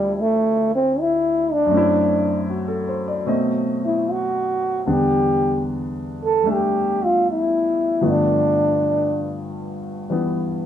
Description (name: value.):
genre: jazz.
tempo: 77 BPM.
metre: 4/4.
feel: swing 68% on 8ths.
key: unclear.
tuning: A4 = 444 Hz.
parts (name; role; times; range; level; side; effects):
breathy trombone; melody; 0.0-9.4 s; G3 to A4; -18 LUFS; equal; none.
warm grand piano; accompaniment; 0.0-10.7 s; D2 to E5; -22 LUFS; equal; none.
room: moderate studio reverb, RT60 0.6 s.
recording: none.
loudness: -18 LUFS.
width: side -10 dB against mid.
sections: 0.0-10.7 A section.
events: none.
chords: 0.0 Dm9; 1.7 F#m7b5; 3.3 B7b9; 4.9 Em7; 8.0 G9.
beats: 0.15 0.93 | 1.71 2.49 3.28 4.07 | 4.87 5.66 6.45 7.24 | 8.02 8.80 9.58 10.36.